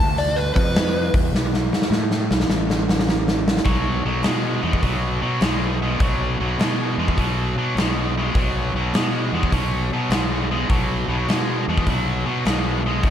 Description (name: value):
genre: blues rock power trio and southern rock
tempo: 103 BPM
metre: 4/4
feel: swing 68% on 8ths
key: unclear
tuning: A4 = 440 Hz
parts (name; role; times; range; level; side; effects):
- overdriven slide guitar; melody; 0.0-1.1 s; B4 to A5; -24 LUFS; equal; slapback echo, tape echo
- fuzz fingered electric bass; bass; 0.0-13.1 s; E1 to B2; -24 LUFS; equal; overdrive
- big rock drum kit; drums; 0.2-13.1 s; hi-hat, kick drum, snare drum; -22 LUFS; equal; none
- tight distorted guitar; riff; 3.6-13.1 s; E2 to G#3; -23 LUFS; equal; distortion, slapback echo
room: moderate concert hall reverb, RT60 2.0 s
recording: big arena sound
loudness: -18 LUFS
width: side -10 dB against mid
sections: 0.0-3.7 A section; 3.7-13.1 B section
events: electric slide guitar solo 0.0-3.7; drum fill 1.3-3.7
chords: 0.0 N.C.; 3.7 B5